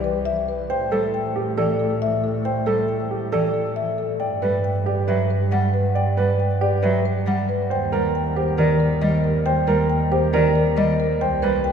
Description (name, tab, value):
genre	classical, minimalist pattern music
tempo	137 BPM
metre	4/4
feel	straight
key	G major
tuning	A4 = 441 Hz
part	marimba with soft mallets	melody	0.0-11.7 s	A4 to G5	-24 LUFS	left 6 dB	none
part	warm double bass	bass	0.0-11.7 s	C2 to A2	-24 LUFS	right 2 dB	none
part	clear grand piano	arpeggios	0.7-11.7 s	G4 to D5	-24 LUFS	right 5 dB	none
part	rich cello	accompaniment	0.9-11.6 s	Eb3 to G3	-26 LUFS	equal	none
room	wet cathedral reverb, RT60 5.2 s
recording	heard from further back in the room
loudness	-18 LUFS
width	side -7 dB against mid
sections	0.0-11.7 A section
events	none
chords	0.0 Cmaj7; 0.7 Am7; 4.2 G; 7.7 Eb; 11.2 Cmaj7(no3)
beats	0.26 | 0.70 1.14 1.58 2.01 | 2.45 2.89 3.33 3.77 | 4.20 4.64 5.08 5.52 | 5.96 6.39 6.83 7.27 | 7.71 8.14 8.58 9.02 | 9.46 9.90 10.34 10.77 | 11.21 11.65